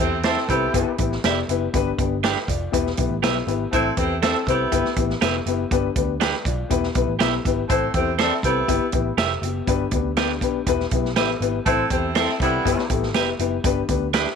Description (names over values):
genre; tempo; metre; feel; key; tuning
uptempo 1960s-style soul; 121 BPM; 4/4; straight; unclear; A4 = 440 Hz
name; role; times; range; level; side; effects
warm saxophone section; second line; 0.0-12.9 s; G3 to A4; -24 LUFS; right 3 dB; none
dark upright piano; accompaniment; 0.0-14.4 s; B3 to G5; -24 LUFS; left 10 dB; none
vintage muted picked electric bass; bass; 0.0-14.2 s; E1 to E2; -28 LUFS; right 2 dB; none
electric guitar at the edge of break-up; stabs; 0.2-14.3 s; D4 to E5; -26 LUFS; right 14 dB; none
vintage drum kit; drums; 0.2-14.3 s; hi-hat, kick drum, snare drum; -25 LUFS; right 2 dB; none
room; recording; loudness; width
moderate spring reverb, RT60 2.1 s; 1960s-style stereo with parts hard left and right; -19 LUFS; side -6 dB against mid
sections
0.0-14.4 A section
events
none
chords
0.0 Am; 0.7 Em/G; 1.7 G; 2.7 Em; 3.7 Am; 4.7 Em/G; 5.7 G; 6.7 Em; 7.7 Am; 8.7 Em/G; 9.7 G; 10.7 Em; 11.7 Am; 12.7 Em/G; 13.6 G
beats
0.25 0.74 1.24 | 1.74 2.24 2.73 3.23 | 3.73 4.22 4.72 5.21 | 5.71 6.21 6.70 7.20 | 7.69 8.19 8.69 9.18 | 9.68 10.17 10.67 11.16 | 11.66 12.16 12.65 13.15 | 13.64 14.14